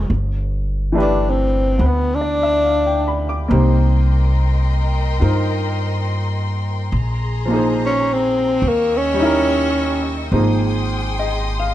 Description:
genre	jazz ballad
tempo	70 BPM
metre	4/4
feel	swing 67% on 8ths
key	unclear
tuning	A4 = 440 Hz
part	breathy tenor saxophone	melody	0.0-10.3 s	Bb3 to D4	-18 LUFS	left 1 dB	none
part	clear baby grand piano	accompaniment	0.0-11.7 s	Fb3 to D6	-22 LUFS	equal	none
part	upright bass	bass	0.0-11.7 s	G1 to G2	-19 LUFS	equal	none
part	warm studio string section	sustained chords	3.5-11.7 s	G4 to Fb6	-26 LUFS	left 2 dB	none
room	light reverb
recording	none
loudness	-16 LUFS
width	side -13 dB against mid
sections	0.0-11.7 A section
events	tenor saxophone solo 0.0-11.7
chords	0.1 G; 3.5 Cm7; 6.9 Bbsus2; 8.6 Eb7b9; 10.3 Abmaj7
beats	| 0.09 0.94 1.79 2.65 | 3.50 4.36 5.22 6.07 | 6.92 7.77 8.62 9.47 | 10.32 11.17

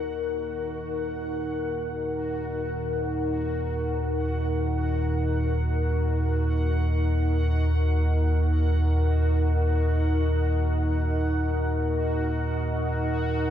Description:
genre	dark ambient drone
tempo	free time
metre	none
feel	none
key	Eb minor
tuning	A4 = 442 Hz
part	deep dark ambient pad	sustained chords	0.0-13.5 s	Eb4 to Eb5	-29 LUFS	left 1 dB	chorus, built-in reverb
part	deep rumbling drone	drone	0.0-13.5 s	Eb2 to Bb2	-25 LUFS	equal	built-in reverb
part	bubbling stepped-filter texture	texture	0.0-13.5 s	Gb4 to Gb5	-36 LUFS	equal	chorus, built-in reverb
room	moderate huge ambient reverb, RT60 7.1 s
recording	none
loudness	-23 LUFS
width	side -10 dB against mid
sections	0.0-13.5 A section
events	fade-in on synth texture 0.0-13.5; fade-out on ambient pad 0.0-13.5; filter sweep on synth drone 0.0-13.5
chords	0.0 Eb5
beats	free time

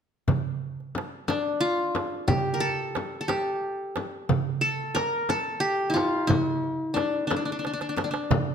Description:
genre	Arabic maqam ensemble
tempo	60 BPM (dotted quarters)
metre	6/8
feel	straight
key	D maqam bayati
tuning	A4 = 440 Hz
part	darbuka	percussion	0.3-8.5 s	none	-30 LUFS	right 8 dB	none
part	frame drum	percussion	0.3-8.5 s	none	-30 LUFS	left 5 dB	none
part	qanun	melody	1.3-8.5 s	D4 to Bb4	-26 LUFS	left 1 dB	none
room	moderate recital hall reverb, RT60 1.3 s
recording	close, detailed microphones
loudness	-25 LUFS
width	side -7 dB against mid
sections	0.3-8.5 A section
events	drum fill 7.6-8.3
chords	none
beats	| 0.29 1.29 | 2.29 3.29 | 4.29 5.30 | 6.30 7.30 | 8.30

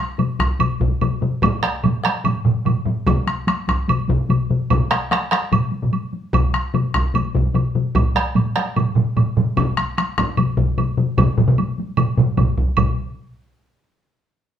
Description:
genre	japanese traditional, taiko drum ensemble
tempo	148 BPM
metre	4/4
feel	straight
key	none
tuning	none
part	solo taiko drums	percussion	0.2-13.2 s	none	-21 LUFS	left 4 dB	none
part	taiko ensemble	percussion	0.2-13.0 s	none	-25 LUFS	equal	none
part	woodblock	percussion	0.2-13.0 s	none	-25 LUFS	right 6 dB	none
part	taiko ensemble	percussion	0.4-13.0 s	none	-22 LUFS	right 1 dB	none
part	taiko ensemble	percussion	1.4-13.1 s	none	-19 LUFS	right 2 dB	none
room	wet studio reverb, RT60 0.7 s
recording	band playing live in one room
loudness	-17 LUFS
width	side -9 dB against mid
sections	0.0-12.8 A section; 12.8-14.4 B section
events	speeding up 0.0-14.4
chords	none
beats	0.19 0.60 1.01 | 1.43 1.84 2.25 2.66 | 3.07 3.48 3.89 4.30 | 4.71 5.12 5.52 5.93 | 6.34 6.74 7.15 7.55 | 7.96 8.36 8.77 9.17 | 9.57 9.98 10.38 10.78 | 11.18 11.58 11.98 12.38 | 12.78

